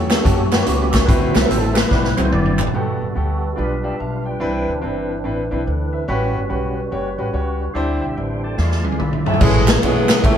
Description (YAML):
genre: uptempo gospel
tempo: 144 BPM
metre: 4/4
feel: swing 64% on 8ths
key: G major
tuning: A4 = 440 Hz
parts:
  - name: clear baby grand piano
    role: accompaniment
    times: 0.0-10.4 s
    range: G2 to B5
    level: -24 LUFS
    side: left 2 dB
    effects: none
  - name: percussive tonewheel organ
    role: sustained chords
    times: 0.0-10.4 s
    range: E3 to A5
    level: -25 LUFS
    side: right 1 dB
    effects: slow rotary speaker, overdrive, chorus vibrato
  - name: warm French horn section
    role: sustained chords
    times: 0.0-9.4 s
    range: E3 to B4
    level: -30 LUFS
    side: right 1 dB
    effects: none
  - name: upright bass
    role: bass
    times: 0.0-10.4 s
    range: F#1 to F#2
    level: -22 LUFS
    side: equal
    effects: none
  - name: swinging big-band drum kit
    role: drums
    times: 0.1-2.7, 8.6-10.4 s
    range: crash cymbal, hi-hat, kick drum, ride cymbal, snare drum, toms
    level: -17 LUFS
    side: equal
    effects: none
  - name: group handclap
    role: percussion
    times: 0.1-2.7, 9.7-10.2 s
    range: none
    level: -28 LUFS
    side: right 4 dB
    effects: none
  - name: clear saxophone section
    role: melody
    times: 9.3-10.4 s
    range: B2 to B3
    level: -19 LUFS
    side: right 1 dB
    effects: none
room: moderate studio ambience, RT60 0.5 s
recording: band playing live in one room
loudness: -16 LUFS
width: side -9 dB against mid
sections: 0.0-2.7 A section; 2.7-9.4 B section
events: tonewheel organ solo 0.0-2.7; drum fill 1.9-2.7, 8.6-9.4; tonewheel organ fill 8.2-9.4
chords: 0.0 A13/E; 1.1 D13; 2.7 Gmaj9; 3.6 G7/B; 4.4 Cmaj9; 6.1 A13; 7.7 D9sus4; 8.6 E7b9; 9.4 Amaj9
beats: 0.26 0.67 | 1.08 1.50 1.92 2.33 | 2.75 3.16 3.58 4.00 | 4.41 4.83 5.25 5.66 | 6.08 6.50 6.91 7.33 | 7.75 8.16 8.58 9.00 | 9.41 9.83 10.24